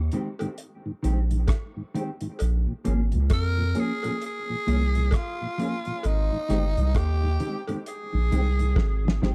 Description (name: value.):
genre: roots reggae.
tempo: 66 BPM.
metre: 4/4.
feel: swing 61% on 16ths.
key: Ab major.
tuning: A4 = 440 Hz.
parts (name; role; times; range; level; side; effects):
soft dub sub bass; bass; 0.0-9.3 s; G1 to F2; -26 LUFS; equal; none.
mellow electric guitar; accompaniment; 0.1-9.3 s; Eb3 to Ab4; -34 LUFS; equal; subtle chorus, dub echo.
mellow tonewheel organ; accompaniment; 0.1-9.3 s; Ab2 to Ab4; -38 LUFS; equal; chorus vibrato, slow rotary speaker, dub echo.
cloth-damped thuddy drum kit; drums; 0.1-9.3 s; hi-hat, kick drum, rim click, snare drum; -28 LUFS; equal; none.
cowbell; percussion; 0.4-9.0 s; none; -40 LUFS; equal; none.
raspy tenor saxophone; melody; 3.3-9.2 s; Eb4 to Bb4; -34 LUFS; equal; dub echo.
room: little or no reverb.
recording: dark, warm production.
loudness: -26 LUFS.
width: mono.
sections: 0.0-9.3 A section.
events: drum fill 8.8-9.3.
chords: 0.0 Abmaj7; 2.4 Bbm7; 6.0 Abmaj7.